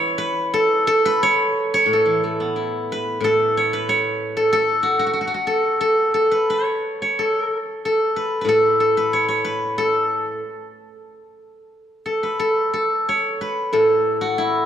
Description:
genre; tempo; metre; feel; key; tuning
chinese traditional, Chinese solo plucked strings; 85-96 BPM; 2/4; rubato; A gong mode; A4 = 440 Hz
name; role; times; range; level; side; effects
steel-string zither; solo; 0.0-14.7 s; A2 to E5; -17 LUFS; equal; none
room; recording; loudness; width
moderate concert hall reverb, RT60 2.1 s; dark, warm production; -17 LUFS; side -9 dB against mid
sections
0.0-1.9 A section; 1.9-12.4 B section; 12.4-14.7 C section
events
none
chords
none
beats
| 0.51 1.20 | 1.89 2.56 | 3.21 3.86 | 4.49 5.13 | 5.79 6.47 | 7.16 7.82 | 8.47 9.11 | 9.76 10.40 | 11.04 11.70 | 12.40 13.08 | 13.74 14.39

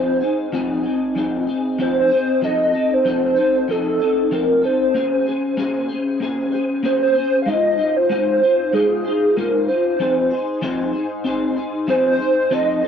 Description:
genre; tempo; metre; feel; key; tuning
indie pop; 95 BPM; 4/4; swing 55% on 16ths; unclear; A4 = 439 Hz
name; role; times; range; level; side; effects
warbly nostalgic lead; melody; 0.0-12.9 s; Ab4 to F5; -17 LUFS; right 1 dB; ensemble chorus, slapback echo
electric guitar through a small old amp; accompaniment; 0.0-12.9 s; F3 to C5; -20 LUFS; left 2 dB; ensemble chorus, warbly pitch drift
room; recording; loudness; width
moderate small room reverb, RT60 0.6 s; dry, close 1970s-style studio recording; -16 LUFS; side -8 dB against mid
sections
0.0-12.9 A section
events
none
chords
0.0 Fm7; 2.4 F7; 4.9 Bbm9; 7.5 Ab6; 10.0 Fm7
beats
0.53 1.16 1.79 | 2.42 3.06 3.69 4.32 | 4.95 5.58 6.21 6.84 | 7.47 8.10 8.73 9.36 | 9.99 10.62 11.25 11.88 | 12.50

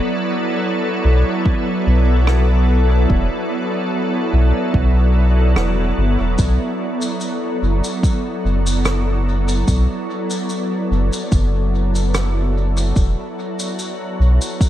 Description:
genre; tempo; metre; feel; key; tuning
ambient dub; 73 BPM; 4/4; swing 53% on 16ths; unclear; A4 = 442 Hz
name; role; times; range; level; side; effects
soft additive organ-like pad; sustained chords; 0.0-14.7 s; F#3 to D5; -20 LUFS; equal; ensemble chorus, built-in reverb
soft dub sub bass; bass; 1.0-14.4 s; E1 to B1; -15 LUFS; equal; none
electronic kick drum; drums; 1.5-14.7 s; none; -17 LUFS; equal; none
rim click and shaker; drums; 2.3-14.7 s; none; -27 LUFS; equal; dub echo
room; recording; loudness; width
light reverb; none; -15 LUFS; side -12 dB against mid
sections
0.0-14.7 A section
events
none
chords
0.0 E7sus2; 6.4 Bm7; 13.0 Esus2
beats
0.64 1.46 2.28 | 3.10 3.92 4.75 5.57 | 6.39 7.21 8.03 8.86 | 9.68 10.50 11.32 12.14 | 12.97 13.79 14.61

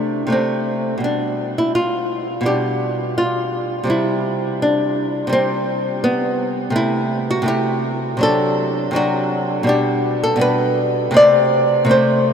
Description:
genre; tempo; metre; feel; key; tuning
classical, baroque-style dance for nylon-string guitar; 83 BPM; 4/4; rubato; C major; A4 = 441 Hz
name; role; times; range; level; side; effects
nylon-string guitar; solo; 0.0-12.3 s; B2 to D5; -16 LUFS; equal; none
room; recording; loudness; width
wet huge ambient reverb, RT60 7.9 s; in a vast, echoing space; -16 LUFS; side -7 dB against mid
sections
0.0-12.3 A section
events
none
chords
0.0 D7(no3)/C; 1.0 G/B; 3.9 C; 6.8 Am7/C; 8.2 D7/C; 9.7 G/B; 11.2 Am/C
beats
0.31 | 1.03 1.76 2.47 3.19 | 3.91 4.62 5.33 6.04 | 6.75 7.49 8.23 8.97 | 9.70 10.42 11.16 11.90

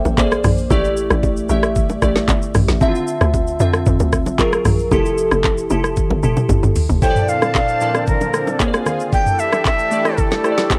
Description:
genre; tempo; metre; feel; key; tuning
amapiano; 114 BPM; 4/4; straight; unclear; A4 = 442 Hz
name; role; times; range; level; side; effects
glassy digital keys; accompaniment; 0.0-10.8 s; Bb2 to A5; -22 LUFS; equal; chorus, cassette tape, plate reverb
tight log drum bass; bass; 0.0-7.0 s; F1 to F2; -22 LUFS; equal; none
smooth R&B drum kit; drums; 0.1-10.8 s; handclaps, hi-hat, kick drum, rim click, shaker, snare drum, toms; -20 LUFS; equal; none
bongos and congas; percussion; 0.1-10.8 s; none; -29 LUFS; equal; none
breathy bright jazz flute; melody; 7.0-10.8 s; A4 to G5; -22 LUFS; equal; cassette tape, plate reverb
lush unison pad; sustained chords; 7.0-10.8 s; D3 to A5; -26 LUFS; equal; chorus, sidechain pumping, cassette tape, plate reverb
room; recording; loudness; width
moderate booth ambience, RT60 0.2 s; home recording on cassette; -17 LUFS; mono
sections
0.0-7.0 A section; 7.0-10.8 B section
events
drop 0.0-7.0; drum fill 6.0-7.0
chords
0.2 Bb9; 0.7 A7sus4; 2.8 Dm9; 4.4 F#maj9; 4.9 Fmaj9; 7.0 Bbmaj9#11; 8.6 Bb9; 9.1 A7sus4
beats
0.18 | 0.70 1.23 1.76 2.28 | 2.81 3.34 3.86 4.39 | 4.92 5.44 5.97 6.50 | 7.02 7.55 8.07 8.60 | 9.13 9.65 10.18 10.71

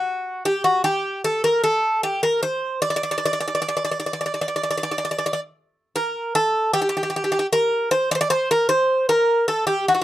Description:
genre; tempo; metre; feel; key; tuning
greek folk; 153 BPM (eighths); 9/8; straight; unclear; A4 = 440 Hz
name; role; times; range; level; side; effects
Greek bouzouki; solo; 0.0-10.0 s; F#4 to D5; -19 LUFS; equal; none
room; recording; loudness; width
light reverb; dry, close 1970s-style studio recording; -19 LUFS; side -14 dB against mid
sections
0.0-6.3 A section; 6.3-10.0 B section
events
none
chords
none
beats
0.05 0.45 0.84 1.24 1.63 2.02 2.42 | 2.81 3.21 3.60 3.99 4.39 4.78 5.17 5.56 5.96 | 6.35 6.74 7.13 7.52 7.91 8.30 8.69 9.08 9.47 | 9.86

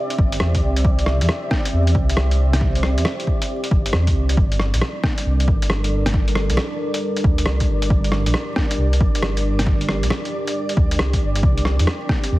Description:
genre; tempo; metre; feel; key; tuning
future garage; 136 BPM; 4/4; swing 65% on 16ths; unclear; A4 = 445 Hz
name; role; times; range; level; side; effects
dark analog pad; sustained chords; 0.0-12.4 s; G3 to E5; -26 LUFS; right 1 dB; chorus, sidechain pumping
flickering grainy texture; texture; 0.0-12.4 s; D5; -32 LUFS; right 1 dB; built-in reverb
lo-fi sampler-style drum kit; drums; 0.1-12.3 s; hi-hat, rim click; -24 LUFS; equal; overdrive, small room reverb
dark detuned saw bass; bass; 0.2-12.4 s; G1 to E2; -19 LUFS; equal; tube saturation, sidechain pumping
electronic kick drum; drums; 0.2-12.2 s; none; -20 LUFS; equal; overdrive, small room reverb
room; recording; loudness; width
light reverb, digital ambience; heavily compressed radio sound, vinyl crackle; -17 LUFS; side -18 dB against mid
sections
0.0-12.4 A section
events
none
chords
0.0 C13; 11.4 C9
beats
0.40 | 0.84 1.28 1.73 2.17 | 2.61 3.05 3.49 3.93 | 4.37 4.82 5.26 5.70 | 6.14 6.58 7.02 7.46 | 7.90 8.34 8.79 9.23 | 9.67 10.11 10.55 10.99 | 11.43 11.87 12.31

